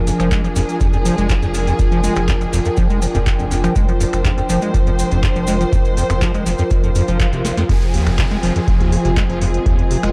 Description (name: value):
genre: acid house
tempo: 122 BPM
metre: 4/4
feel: straight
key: F dorian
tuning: A4 = 438 Hz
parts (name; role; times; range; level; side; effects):
- rich studio string section; sustained chords; 0.0-10.1 s; F3 to C5; -26 LUFS; equal; sidechain pumping
- warm sub bass; bass; 0.0-10.1 s; F1; -24 LUFS; equal; sidechain pumping
- ethereal airy pad; texture; 0.0-10.1 s; F4 to Eb6; -27 LUFS; equal; ensemble chorus, built-in reverb, sidechain pumping
- liquid acid bass; riff; 0.1-10.1 s; F1 to Ab3; -23 LUFS; equal; chorus, sidechain pumping, dub echo
- booming analog drum machine; drums; 0.1-10.1 s; finger snaps, handclaps, hi-hat, snare drum; -30 LUFS; equal; analog delay
- maracas; percussion; 0.1-7.7 s; none; -36 LUFS; equal; analog delay
- electronic kick drum; drums; 0.3-9.8 s; none; -20 LUFS; equal; none
- swell and downlifter; sound effects; 6.9-10.1 s; none; -34 LUFS; equal; none
room: light reverb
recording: echo-heavy mix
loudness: -17 LUFS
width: mono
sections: 0.0-7.7 A section; 7.7-10.1 B section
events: swell 6.9-7.7; band accent 7.2; drum fill 7.4; drop 7.7-10.1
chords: 0.0 Fm